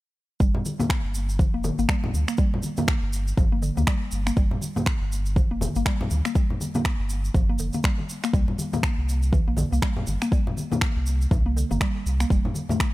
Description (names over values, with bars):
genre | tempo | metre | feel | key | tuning
afro house | 121 BPM | 4/4 | swing 59% on 16ths | G dorian | A4 = 440 Hz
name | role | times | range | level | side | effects
mallet-like synth pluck | arpeggios | 0.4-12.8 s | D3 to Bb3 | -29 LUFS | equal | analog chorus, cassette tape, sidechain pumping, dub echo
warm sub bass | bass | 0.4-12.4 s | F1 to D2 | -25 LUFS | equal | tube saturation, sidechain pumping
electronic kick drum | drums | 0.4-12.9 s | none | -23 LUFS | equal | none
tube shaker | percussion | 0.4-12.9 s | none | -39 LUFS | right 3 dB | none
congas | percussion | 0.5-12.8 s | none | -30 LUFS | left 2 dB | none
electronic finger snaps | drums | 0.9-12.9 s | none | -31 LUFS | right 1 dB | none
room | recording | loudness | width
studio ambience | none | -22 LUFS | side -18 dB against mid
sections
0.4-12.9 A section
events
none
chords
0.4 Gm7; 8.3 C7(no3); 12.3 F